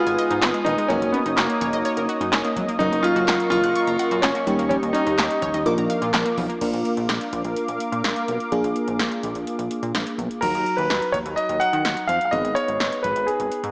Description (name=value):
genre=synth-pop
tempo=126 BPM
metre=4/4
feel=straight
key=Eb minor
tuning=A4 = 440 Hz
part: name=warm concert grand piano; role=melody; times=0.0-5.6, 10.4-13.7 s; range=Bb3 to Gb5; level=-21 LUFS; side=equal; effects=digital delay
part: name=FM electric piano with soft pad layer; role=accompaniment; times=0.0-13.7 s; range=F3 to Bb5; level=-26 LUFS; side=equal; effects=chorus
part: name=warm analog pad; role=sustained chords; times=0.0-10.4 s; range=G4 to Eb6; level=-28 LUFS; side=equal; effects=chorus
part: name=analog pluck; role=arpeggios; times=0.1-6.6 s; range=Eb3 to Gb6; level=-29 LUFS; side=equal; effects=chorus, digital delay
part: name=chorused synth bass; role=bass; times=0.1-13.7 s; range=Gb1 to Eb3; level=-29 LUFS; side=equal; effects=none
part: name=electro analog drum machine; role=drums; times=0.1-13.7 s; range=crash cymbal, handclaps, hi-hat, kick drum, snare drum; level=-26 LUFS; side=equal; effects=none
room=moderate lush hall reverb, RT60 1.8 s, digital ambience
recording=worn, warbling old tape, cassette tape, warbly pitch drift, small speaker sound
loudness=-19 LUFS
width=side -35 dB against mid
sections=0.0-6.6 A section; 6.6-10.4 B section; 10.4-13.7 C section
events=none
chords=0.0 Abm; 0.9 Ebm7/Gb; 2.8 Gb; 4.5 Eb7; 5.7 Bb; 10.4 Ebm; 12.3 Abm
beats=0.42 | 0.90 1.38 1.85 2.33 | 2.80 3.28 3.76 4.23 | 4.71 5.18 5.66 6.14 | 6.61 7.09 7.57 8.04 | 8.52 8.99 9.47 9.95 | 10.42 10.90 11.38 11.85 | 12.33 12.80 13.28